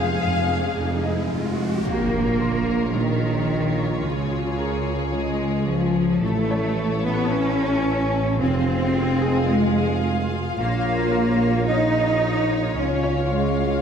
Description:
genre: cinematic, hybrid orchestral and electronic film score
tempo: 110 BPM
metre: 4/4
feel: straight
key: Bb minor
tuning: A4 = 442 Hz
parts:
  - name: warm symphonic violin section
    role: melody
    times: 0.0-13.8 s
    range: Db5 to F5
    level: -32 LUFS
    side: left 6 dB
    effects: none
  - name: rich symphonic violin section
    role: second line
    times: 0.0-13.8 s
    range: Ab4 to Db5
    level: -32 LUFS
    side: left 4 dB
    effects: none
  - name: rich symphonic viola section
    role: accompaniment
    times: 0.0-13.8 s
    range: E4 to Ab4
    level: -32 LUFS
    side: left 1 dB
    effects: none
  - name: mellow French horn section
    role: sustained chords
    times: 0.0-13.8 s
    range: Db3 to Eb4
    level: -26 LUFS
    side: left 5 dB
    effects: none
  - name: mellow tuba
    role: bass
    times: 0.0-13.8 s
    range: F1 to Db2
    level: -28 LUFS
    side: right 4 dB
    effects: none
  - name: rich symphonic cello section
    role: bass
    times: 0.0-13.8 s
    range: Db3 to Eb4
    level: -25 LUFS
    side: right 3 dB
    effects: none
  - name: rich symphonic double bass section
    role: bass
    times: 0.0-13.8 s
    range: F1 to F2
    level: -27 LUFS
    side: right 3 dB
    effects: none
  - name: riser and impact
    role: sound effects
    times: 0.1-4.0 s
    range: none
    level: -31 LUFS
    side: equal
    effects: none
  - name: clear baby grand piano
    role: texture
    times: 0.0-13.8 s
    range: Ab3 to C6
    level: -35 LUFS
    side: left 1 dB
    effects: none
room: wet concert hall reverb, RT60 2.1 s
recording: none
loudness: -19 LUFS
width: side -7 dB against mid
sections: 0.0-1.9 A section; 1.9-13.8 A section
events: riser 0.1-1.9; impact 1.9-4.0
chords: 0.0 Fm; 1.9 Bbm; 4.0 Db; 6.2 A; 8.4 Fm; 10.6 Bbm; 12.8 Db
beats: 0.22 0.77 1.31 | 1.86 2.41 2.95 3.50 | 4.04 4.59 5.13 5.68 | 6.22 6.77 7.32 7.86 | 8.41 8.95 9.50 10.04 | 10.59 11.13 11.68 12.22 | 12.77 13.31

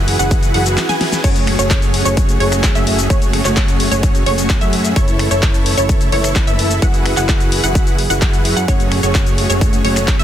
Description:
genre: EDM, festival progressive house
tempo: 129 BPM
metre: 4/4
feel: straight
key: F# minor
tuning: A4 = 438 Hz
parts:
  - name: warm studio string section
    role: sustained chords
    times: 0.0-10.2 s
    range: C#3 to G#4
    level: -25 LUFS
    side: right 2 dB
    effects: sidechain pumping
  - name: wide unison pluck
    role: arpeggios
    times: 0.0-10.2 s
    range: C#5 to G#5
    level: -22 LUFS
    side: right 1 dB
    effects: sidechain pumping, dub echo
  - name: dense compressed supersaw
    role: riff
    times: 0.0-10.2 s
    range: A3 to G#5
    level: -20 LUFS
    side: equal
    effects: sidechain pumping, dub echo
  - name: fat analog bass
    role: bass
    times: 0.0-10.2 s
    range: F#1 to F#2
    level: -20 LUFS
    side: equal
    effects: sidechain pumping
  - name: big-room dance drum kit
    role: drums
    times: 0.1-10.2 s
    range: cabasa, crash cymbal, finger snaps, handclaps, hi-hat, snare drum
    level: -21 LUFS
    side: left 2 dB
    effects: none
  - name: electronic kick drum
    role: drums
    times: 0.3-10.2 s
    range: none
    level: -15 LUFS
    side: equal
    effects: overdrive
  - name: swell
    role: sound effects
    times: 0.5-1.2 s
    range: none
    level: -29 LUFS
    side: right 1 dB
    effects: none
room: little or no reverb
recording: dense, heavily limited modern master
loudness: -12 LUFS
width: side -10 dB against mid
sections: 0.0-10.2 A section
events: drum fill 0.8-1.2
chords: 0.0 Eadd9/F#; 1.2 F#madd9; 5.0 A/F#; 6.8 Eadd9/F#; 8.7 F#madd9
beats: 0.31 0.78 | 1.24 1.71 2.17 2.64 | 3.10 3.57 4.03 4.50 | 4.96 5.43 5.89 6.36 | 6.82 7.29 7.75 8.22 | 8.68 9.15 9.61 10.08

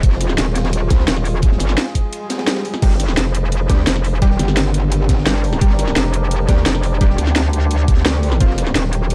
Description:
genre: dark technical drum and bass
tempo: 172 BPM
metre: 4/4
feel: straight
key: G phrygian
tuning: A4 = 441 Hz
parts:
  - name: deep dark ambient pad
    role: sustained chords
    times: 0.0-9.1 s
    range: G3 to Bb4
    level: -30 LUFS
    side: equal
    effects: chorus, built-in reverb, sidechain pumping
  - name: metallic wobble bass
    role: bass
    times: 0.0-9.1 s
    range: Eb1 to D2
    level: -20 LUFS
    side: equal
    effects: chorus, sidechain pumping
  - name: crunchy breakbeat drum kit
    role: drums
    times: 0.0-9.1 s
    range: ride cymbal, snare drum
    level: -31 LUFS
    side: equal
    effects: none
  - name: drum and bass drum kit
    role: drums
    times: 0.0-9.1 s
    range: crash cymbal, hi-hat, snare drum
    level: -23 LUFS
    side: equal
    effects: none
  - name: electronic kick drum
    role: drums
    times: 0.0-8.5 s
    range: none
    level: -17 LUFS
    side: equal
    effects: none
  - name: metallic wobble bass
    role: bass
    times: 0.9-1.1, 3.7-8.4 s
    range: G1 to D2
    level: -19 LUFS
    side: equal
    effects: chorus
  - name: swell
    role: sound effects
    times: 2.2-2.8 s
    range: none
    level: -32 LUFS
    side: equal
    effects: none
  - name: orchestra-hit-like synth stab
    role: stabs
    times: 2.8-8.5 s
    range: F3 to G4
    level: -29 LUFS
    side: equal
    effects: built-in reverb, delay
room: digital ambience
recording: dark, warm production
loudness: -17 LUFS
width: mono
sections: 0.0-9.1 A section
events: break 2.1-2.8; swell 2.2-2.8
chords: 0.0 Fm; 2.8 Gm; 8.4 Fmadd9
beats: | 0.03 0.38 0.73 1.08 | 1.43 1.78 2.13 2.48 | 2.82 3.17 3.52 3.87 | 4.22 4.57 4.92 5.26 | 5.61 5.96 6.31 6.66 | 7.01 7.36 7.71 8.06 | 8.40 8.75 9.10

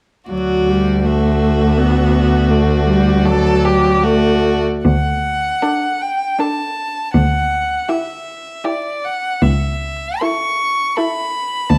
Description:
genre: classical, slow romantic movement for string quartet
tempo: 72-83 BPM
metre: 3/4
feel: rubato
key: D major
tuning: A4 = 441 Hz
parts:
  - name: clear violin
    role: melody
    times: 0.3-11.8 s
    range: D5 to C#6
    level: -24 LUFS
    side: equal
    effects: none
  - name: clear violin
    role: second line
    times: 0.3-11.5 s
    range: F#4 to A4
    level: -23 LUFS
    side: equal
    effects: none
  - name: rich viola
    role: accompaniment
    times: 0.3-11.5 s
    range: F#3 to E4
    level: -20 LUFS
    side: equal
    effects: none
  - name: rich cello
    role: bass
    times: 0.3-11.8 s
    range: C#2 to D2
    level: -18 LUFS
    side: equal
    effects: none
room: moderate recital hall reverb, RT60 1.4 s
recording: close, detailed microphones, vinyl crackle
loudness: -16 LUFS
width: mono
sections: 0.3-4.9 A section; 4.9-11.8 B section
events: none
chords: 0.3 D; 7.1 Em7/D; 9.4 A/C#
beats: | 0.30 1.06 1.79 | 2.52 3.26 4.05 | 4.86 5.63 6.40 | 7.14 7.89 8.65 | 9.42 10.21 10.97 | 11.70

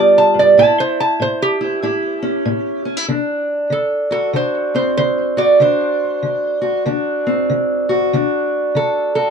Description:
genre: acoustic country blues, solo or duo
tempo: 96 BPM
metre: 4/4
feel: swing 63% on 8ths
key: D mixolydian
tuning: A4 = 440 Hz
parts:
  - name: lap resonator guitar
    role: melody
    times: 0.0-9.3 s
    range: G4 to A5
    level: -15 LUFS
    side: right 3 dB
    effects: analog delay
  - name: fingerpicked steel-string acoustic guitar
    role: accompaniment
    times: 0.0-9.3 s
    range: G2 to G4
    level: -17 LUFS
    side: left 1 dB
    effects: none
room: moderate booth ambience, RT60 0.2 s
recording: none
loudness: -14 LUFS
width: side -6 dB against mid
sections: 0.0-3.1 A section; 3.1-9.3 B section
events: resonator guitar played with a steel bar solo 0.0-3.1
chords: 0.0 G7; 0.6 A7; 3.1 D7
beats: | 0.58 1.21 1.84 2.46 | 3.09 3.72 4.35 4.98 | 5.61 6.24 6.86 7.49 | 8.12 8.75

